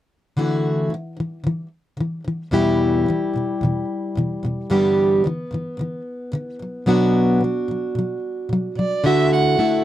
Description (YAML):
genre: pop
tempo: 111 BPM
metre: 4/4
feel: straight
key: D major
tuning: A4 = 440 Hz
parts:
  - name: picked plugged-in steel-string acoustic guitar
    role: accompaniment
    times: 0.4-9.8 s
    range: E2 to G4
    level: -19 LUFS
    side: equal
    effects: none
  - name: warm violin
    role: melody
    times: 8.8-9.8 s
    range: D5 to F#5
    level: -21 LUFS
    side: right 4 dB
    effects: none
room: moderate booth ambience, RT60 0.2 s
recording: dry, close 1970s-style studio recording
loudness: -18 LUFS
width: side -12 dB against mid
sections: 0.4-9.0 A section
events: none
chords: 0.4 Dadd9; 2.5 Em; 4.7 G6; 6.6 Bm; 9.0 Dadd9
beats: | 0.37 0.91 1.45 1.99 | 2.54 3.08 3.62 4.16 | 4.71 5.25 5.79 6.33 | 6.87 7.42 7.96 8.50 | 9.04 9.58